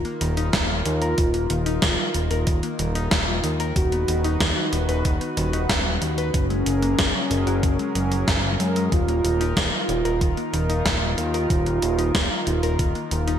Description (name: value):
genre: synthwave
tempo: 93 BPM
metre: 4/4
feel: straight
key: Eb minor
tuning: A4 = 441 Hz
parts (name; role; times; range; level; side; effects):
- warm velvety synth lead; melody; 0.0-13.4 s; Db4 to F#4; -28 LUFS; right 1 dB; chorus, ping-pong delay
- warm analog pad; sustained chords; 0.0-13.4 s; Eb3 to B4; -29 LUFS; right 1 dB; chorus, sidechain pumping
- thumb-piano-like synth pluck; arpeggios; 0.0-13.4 s; Db3 to B4; -29 LUFS; left 2 dB; chorus, digital delay
- fat analog bass; bass; 0.0-13.4 s; Eb1 to Gb2; -25 LUFS; equal; none
- gated 80s digital drum machine; drums; 0.0-13.4 s; hi-hat, snare drum; -25 LUFS; equal; gated reverb, gated reverb snare
- electronic kick drum; drums; 0.5-12.9 s; none; -24 LUFS; equal; none
room: moderate lush hall reverb, RT60 1.9 s, digital ambience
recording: bright 1980s-style digital production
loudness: -20 LUFS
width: side -9 dB against mid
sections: 0.0-13.4 A section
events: none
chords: 0.0 Ebsus2; 3.8 B/D#; 6.3 Gbadd9; 8.9 Ebsus2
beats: 0.53 | 1.18 1.82 2.47 3.11 | 3.76 4.40 5.05 5.70 | 6.34 6.99 7.63 8.28 | 8.92 9.57 10.21 10.86 | 11.50 12.15 12.79